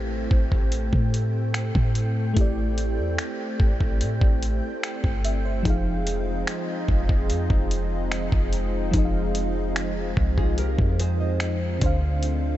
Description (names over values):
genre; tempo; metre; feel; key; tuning
contemporary R&B; 73 BPM; 4/4; straight; unclear; A4 = 440 Hz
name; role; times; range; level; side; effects
FM electric piano with soft pad layer; accompaniment; 0.0-12.6 s; D3 to G5; -31 LUFS; equal; chorus, tremolo
lush unison pad; sustained chords; 0.0-12.6 s; D3 to G5; -31 LUFS; left 1 dB; chorus
clean 808-style bass; bass; 0.0-12.6 s; F1 to A2; -25 LUFS; equal; none
dusty soul sampler-style drum kit; drums; 0.3-12.4 s; finger snaps, hi-hat, kick drum; -25 LUFS; equal; none
nylon-string guitar; arpeggios; 10.4-11.8 s; F4 to Eb5; -33 LUFS; equal; wide subtle chorus, ping-pong delay
room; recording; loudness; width
light reverb; nothing above 8.0 kHz; -21 LUFS; side -14 dB against mid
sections
0.0-12.6 A section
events
none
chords
0.0 Am7; 5.7 Fm7; 11.8 Dm7